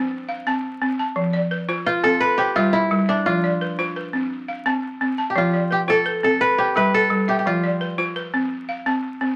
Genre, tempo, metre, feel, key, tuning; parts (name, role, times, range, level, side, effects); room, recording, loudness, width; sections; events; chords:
west african traditional, West African string and xylophone music; 114 BPM (dotted quarters); 12/8; straight; F lydian; A4 = 438 Hz
kora; melody; 0.0-9.0 s; C4 to B4; -22 LUFS; equal
balafon; arpeggios; 0.0-9.4 s; F3 to A5; -24 LUFS; equal
moderate large studio reverb, RT60 0.9 s; vinyl crackle; -21 LUFS; mono
0.0-9.4 A section
0.1 F/C; 1.2 F; 2.2 G; 3.3 F5; 4.3 F; 6.4 G; 7.5 F5; 8.5 F